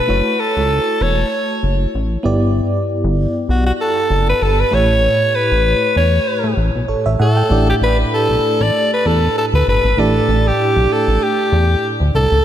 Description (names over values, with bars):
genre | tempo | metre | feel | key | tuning
1980s-style pop | 97 BPM | 4/4 | swing 55% on 16ths | unclear | A4 = 441 Hz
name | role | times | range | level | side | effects
raspy alto saxophone | melody | 0.0-12.4 s | F#4 to D5 | -16 LUFS | equal | ping-pong delay
FM electric piano with tremolo | accompaniment | 0.0-12.4 s | G2 to G5 | -20 LUFS | right 1 dB | none
chorused synth bass | bass | 0.1-12.4 s | E1 to A2 | -16 LUFS | equal | none
room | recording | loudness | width
moderate lush hall reverb, RT60 2.5 s | dreamy mix soaked in reverb | -13 LUFS | side -10 dB against mid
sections
0.0-7.5 A section; 7.5-12.4 B section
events
none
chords
0.1 F#m7; 2.2 G6; 4.7 A7; 7.5 A7sus4